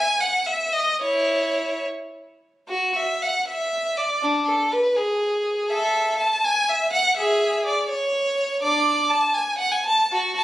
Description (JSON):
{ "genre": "classical, baroque-style suite movement for unaccompanied violin", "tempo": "66-85 BPM (dotted quarters)", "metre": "6/8", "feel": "rubato", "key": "unclear", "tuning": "A4 = 440 Hz", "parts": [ { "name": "clear violin", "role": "solo", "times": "0.0-10.4 s", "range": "D4 to A5", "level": "-20 LUFS", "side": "equal", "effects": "none" } ], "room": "moderate stone room reverb, RT60 1.4 s", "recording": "recorded on a phone in the room, club reverb", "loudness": "-20 LUFS", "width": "side -14 dB against mid", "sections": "0.0-2.7 A section; 2.7-10.4 B section", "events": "none", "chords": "none" }